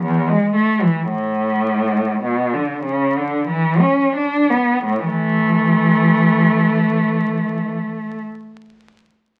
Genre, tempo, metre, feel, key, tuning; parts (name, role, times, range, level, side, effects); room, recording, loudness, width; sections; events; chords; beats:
classical, baroque-style suite movement for unaccompanied cello; 43-58 BPM; 3/4; rubato; A major; A4 = 438 Hz
warm cello; solo; 0.0-8.2 s; E2 to D4; -18 LUFS; equal
moderate studio reverb, RT60 0.8 s; very old 78 rpm record, vinyl crackle; -17 LUFS; mono
0.0-4.8 A section; 4.8-8.8 B section
slowing down 0.0-4.8
0.0 E; 1.1 A; 4.8 A5
0.00 | 1.09 2.25 3.48 | 4.84 6.17 7.50